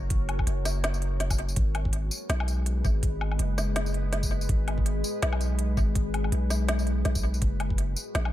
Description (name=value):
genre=half-time drum and bass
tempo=164 BPM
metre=4/4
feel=swing 56% on 16ths, half-time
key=G# minor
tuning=A4 = 440 Hz
part: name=deep dark ambient pad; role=sustained chords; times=0.0-8.3 s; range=G#3 to D#5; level=-34 LUFS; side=left 2 dB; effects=chorus, built-in reverb, sidechain pumping
part: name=long sustained 808-style bass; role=bass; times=0.0-8.3 s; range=F#1 to B1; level=-27 LUFS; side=equal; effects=tube saturation
part: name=electronic kick drum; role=drums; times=0.1-7.8 s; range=none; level=-27 LUFS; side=equal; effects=studio reverb
part: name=organic electronic drum kit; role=drums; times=0.1-8.3 s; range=hi-hat, snare drum, tambourine, woodblock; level=-32 LUFS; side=equal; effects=overdrive, studio reverb, tape echo
room=digital ambience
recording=echo-heavy mix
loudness=-25 LUFS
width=side -14 dB against mid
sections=0.0-8.3 A section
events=none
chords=0.0 F#; 1.6 G#m; 7.4 F#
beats=| 0.10 0.47 0.83 1.20 | 1.56 1.93 2.30 2.66 | 3.03 3.39 3.76 4.12 | 4.49 4.86 5.22 5.59 | 5.95 6.32 6.69 7.05 | 7.42 7.78 8.15